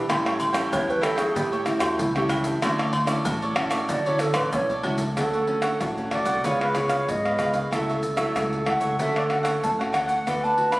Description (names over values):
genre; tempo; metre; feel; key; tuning
samba and choro; 94 BPM; 4/4; straight; D major; A4 = 440 Hz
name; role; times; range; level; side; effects
mellow hollow alto flute; second line; 0.0-10.8 s; E4 to D5; -27 LUFS; right 1 dB; none
cavaquinho; accompaniment; 0.0-10.8 s; D4 to G5; -29 LUFS; right 1 dB; none
nylon-string guitar; accompaniment; 0.0-10.8 s; G#2 to F#4; -30 LUFS; left 1 dB; none
upright bass; bass; 0.1-10.8 s; G#1 to D3; -32 LUFS; equal; none
agogo bells, tube shaker, surdo, pandeiro and tamborim; percussion; 0.1-10.8 s; none; -27 LUFS; equal; none
bright baroque flute; melody; 6.1-10.8 s; B4 to B5; -25 LUFS; equal; plate reverb
room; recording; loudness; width
light reverb; recorded on a phone in the room, studio reverb, compression; -21 LUFS; side -19 dB against mid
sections
0.0-5.2 A section; 5.2-10.8 B section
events
alto flute solo 0.0-5.2; drum fill 4.2-5.2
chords
0.1 A7; 2.6 Dmaj9; 5.2 Dmaj7; 6.4 C#7; 7.7 F#m7/C#; 9.0 Dmaj7; 10.3 Bm7/D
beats
| 0.09 0.73 1.36 2.00 | 2.63 3.27 3.90 4.54 | 5.17 5.81 6.45 7.08 | 7.72 8.36 9.00 9.63 | 10.27